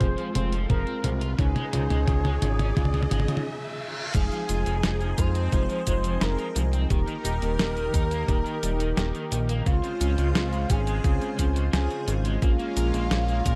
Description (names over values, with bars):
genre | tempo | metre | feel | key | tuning
synthwave | 87 BPM | 4/4 | straight | F minor | A4 = 440 Hz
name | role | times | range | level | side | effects
expressive synth lead | melody | 0.0-13.6 s | F4 to C5 | -35 LUFS | equal | subtle chorus, cassette tape, digital delay
brassy analog pad | sustained chords | 0.0-13.6 s | Db3 to C5 | -37 LUFS | equal | chorus, tremolo, sidechain pumping
crunchy overdriven guitar | riff | 0.0-13.5 s | Db3 to Bb4 | -40 LUFS | equal | lush chorus, digital delay
mellow FM electric piano | stabs | 0.0-13.6 s | Ab3 to Ab4 | -38 LUFS | equal | chorus, vintage 12-bit sampler grit
fat analog bass | bass | 0.0-13.6 s | Eb1 to Bb2 | -28 LUFS | equal | none
detuned 8-bit digital drum machine | drums | 0.0-13.6 s | crash cymbal, hi-hat, shaker, snare drum, toms | -32 LUFS | equal | none
electronic kick drum | drums | 0.0-13.6 s | none | -28 LUFS | equal | none
riser and reverse cymbal | sound effects | 0.2-4.1 s | none | -41 LUFS | equal | none
string machine, violins | second line | 4.1-13.6 s | F4 to C5 | -42 LUFS | equal | ensemble chorus, digital delay
room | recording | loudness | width
light reverb, digital ambience | dark, warm production | -25 LUFS | mono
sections
0.0-4.1 A section; 4.1-13.6 B section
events
drum fill 0.0-3.5; riser 0.2-4.1; reverse cymbal 2.8-4.1; break 3.5-4.1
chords
0.0 Fm; 1.4 Dbadd9; 4.1 Fm7; 6.9 Eb; 9.7 Dbmaj7; 12.4 Bbm7